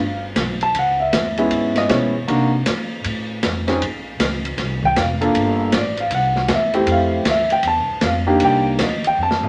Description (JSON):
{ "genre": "jazz, small-group swing and bop", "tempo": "157 BPM", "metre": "4/4", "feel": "swing 65% on 8ths", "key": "unclear", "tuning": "A4 = 438 Hz", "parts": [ { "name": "clear grand piano", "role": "accompaniment", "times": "0.0-9.5 s", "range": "Ab3 to A5", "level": "-20 LUFS", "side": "equal", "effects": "none" }, { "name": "upright bass", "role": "bass", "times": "0.0-9.5 s", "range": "F1 to C3", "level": "-28 LUFS", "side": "equal", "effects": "none" }, { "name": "open jazz drum kit", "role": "drums", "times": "0.4-9.5 s", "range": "hi-hat, kick drum, ride cymbal, snare drum, toms", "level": "-25 LUFS", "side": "equal", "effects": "none" } ], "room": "moderate studio reverb, RT60 0.7 s", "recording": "none", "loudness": "-19 LUFS", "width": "mono", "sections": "0.0-9.5 A section", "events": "drum fill 9.2-9.5", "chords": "0.0 G; 0.7 Dbm11; 2.3 Cm7b5; 3.0 F7; 3.8 Bbmadd9; 5.3 Gm9; 6.1 C; 6.9 Fmaj7; 8.4 Cm7" }